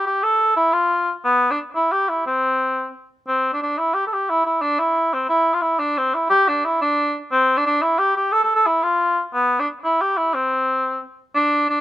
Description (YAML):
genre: celtic folk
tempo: 119 BPM (dotted quarters)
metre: 6/8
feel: straight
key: C major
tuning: A4 = 438 Hz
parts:
  - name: mellow cor anglais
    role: solo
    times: 0.0-11.8 s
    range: B3 to A4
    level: -17 LUFS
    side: equal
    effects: slapback echo
room: little or no reverb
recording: recorded outdoors, with no room sound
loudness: -17 LUFS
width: side -13 dB against mid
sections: 0.0-3.3 A section; 3.3-11.4 A section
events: none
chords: none